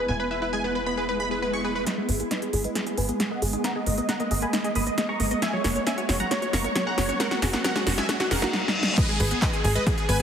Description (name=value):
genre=uplifting trance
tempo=135 BPM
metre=4/4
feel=straight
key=G# minor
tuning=A4 = 441 Hz
part: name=supersaw stab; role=melody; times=0.0-10.2 s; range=F#4 to D#6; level=-28 LUFS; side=right 1 dB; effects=sidechain pumping, low-pass filter, tape echo
part: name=shimmering ambient pad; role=sustained chords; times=0.0-10.2 s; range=F#3 to E4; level=-31 LUFS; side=right 1 dB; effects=chorus, built-in reverb, sidechain pumping
part: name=analog pluck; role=arpeggios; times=0.0-10.2 s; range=F#3 to E5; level=-32 LUFS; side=left 2 dB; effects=chorus, cassette tape, sidechain pumping, ping-pong delay
part: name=tight sequencer bass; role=bass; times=0.0-10.2 s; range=E1 to G#1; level=-29 LUFS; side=equal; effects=tube saturation, sidechain pumping
part: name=swell, riser, reverse cymbal and downlifter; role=sound effects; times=1.1-10.2 s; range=none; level=-33 LUFS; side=left 2 dB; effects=none
part: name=big-room dance drum kit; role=drums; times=1.9-10.2 s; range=crash cymbal, handclaps, hi-hat, ride cymbal, snare drum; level=-28 LUFS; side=equal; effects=overdrive, sidechain pumping on hats, sidechain pumping on cymbals
part: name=electronic kick drum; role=drums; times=9.0-10.0 s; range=none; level=-25 LUFS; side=equal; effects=overdrive
room=moderate lush hall reverb, RT60 2.0 s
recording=heavily compressed radio sound, low-pass filter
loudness=-22 LUFS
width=side -8 dB against mid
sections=0.0-1.9 A section; 1.9-9.0 B section; 9.0-10.2 C section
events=swell 1.1-1.9; build-up 1.9-9.0; drum fill 1.9-8.5, 8.5-9.0; filter sweep on supersaw synth 1.9-9.0; filter sweep on synth pluck 1.9-9.0; reverse cymbal 8.1-9.0; drop 9.0-10.2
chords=0.0 E; 1.9 G#madd9; 5.4 F#add9; 9.0 G#madd9